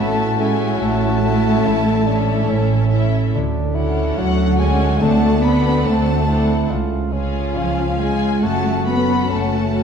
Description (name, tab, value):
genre	classical, slow romantic movement for symphony orchestra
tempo	71 BPM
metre	4/4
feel	rubato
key	unclear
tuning	A4 = 440 Hz
part	warm studio violin section	melody	0.0-9.8 s	E#5 to B5	-29 LUFS	left 4 dB	none
part	mellow hollow concert flute	second line	0.0-9.8 s	E#5 to B5	-27 LUFS	left 2 dB	none
part	warm studio violin section	second line	0.0-9.8 s	G#4 to G#5	-27 LUFS	left 3 dB	none
part	warm bassoon	accompaniment	0.0-9.8 s	C4 to F#4	-26 LUFS	right 2 dB	none
part	warm studio viola section	accompaniment	0.0-9.8 s	C4 to F#4	-27 LUFS	right 1 dB	none
part	mellow French horn section	sustained chords	0.0-9.8 s	E#3 to B3	-23 LUFS	left 6 dB	none
part	concert harp	arpeggios	0.0-9.8 s	F#2 to C#5	-25 LUFS	left 8 dB	none
part	dark studio cello section	bass	0.0-9.8 s	E#3 to B3	-21 LUFS	right 3 dB	none
part	warm studio double bass section	bass	0.0-9.8 s	F#1 to D2	-20 LUFS	right 4 dB	none
room	moderate concert hall reverb, RT60 1.9 s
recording	dark, warm production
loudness	-15 LUFS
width	side -7 dB against mid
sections	0.0-9.8 A section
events	none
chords	0.0 A; 3.3 Dmaj7; 5.0 D7; 6.7 C#; 8.4 F#m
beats	0.81 1.66 2.50 | 3.34 4.17 5.02 5.86 | 6.70 7.56 8.43 9.30